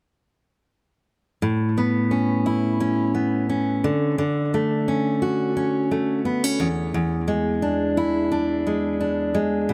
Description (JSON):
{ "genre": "pop", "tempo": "87 BPM", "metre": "4/4", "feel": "swing 55% on 16ths", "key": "A major", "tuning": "A4 = 440 Hz", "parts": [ { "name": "fingerpicked steel-string acoustic guitar", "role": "solo", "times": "1.4-9.7 s", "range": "E2 to F#4", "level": "-22 LUFS", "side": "equal", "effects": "dub echo" } ], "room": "light reverb", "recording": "echo-heavy mix", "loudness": "-23 LUFS", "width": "mono", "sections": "1.4-9.7 A section", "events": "none", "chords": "1.4 Aadd9; 3.8 Dmaj7; 6.6 E7" }